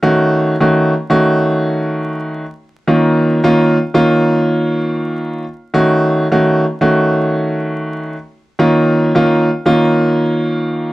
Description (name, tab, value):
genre	hip hop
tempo	84 BPM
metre	4/4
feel	swing 58% on 16ths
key	Db major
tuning	A4 = 442 Hz
part	warm concert grand piano	solo	0.0-10.9 s	Eb3 to Gb4	-12 LUFS	equal	none
room	moderate studio reverb, RT60 0.6 s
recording	vinyl crackle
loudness	-12 LUFS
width	side -17 dB against mid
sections	0.0-2.9 A section; 2.9-10.9 A section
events	none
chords	0.0 Gbm6; 2.9 Db69; 5.7 Gbm6; 8.6 Db69